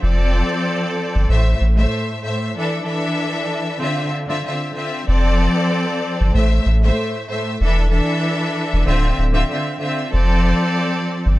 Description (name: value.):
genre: hip hop, boom-bap hip-hop.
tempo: 95 BPM.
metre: 4/4.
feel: swing 57% on 16ths.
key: unclear.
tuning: A4 = 440 Hz.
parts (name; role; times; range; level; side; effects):
clear studio string section; accompaniment; 0.0-11.4 s; A2 to E5; -19 LUFS; equal; cassette tape.
saturated sub bass; bass; 0.0-11.4 s; D1 to A1; -15 LUFS; equal; none.
room: little or no reverb.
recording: none.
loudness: -16 LUFS.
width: side -17 dB against mid.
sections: 0.0-5.1 A section; 5.1-11.4 B section.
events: break 2.5-5.1.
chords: 0.0 F6; 1.3 Am; 2.5 E7sus4; 3.8 Dm9; 5.1 F6; 6.3 Am; 7.6 E7sus4; 8.9 Dm9; 10.1 F6.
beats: | 0.02 0.65 1.29 1.92 | 2.55 3.18 3.81 4.44 | 5.08 5.71 6.34 6.97 | 7.60 8.23 8.87 9.50 | 10.13 10.76.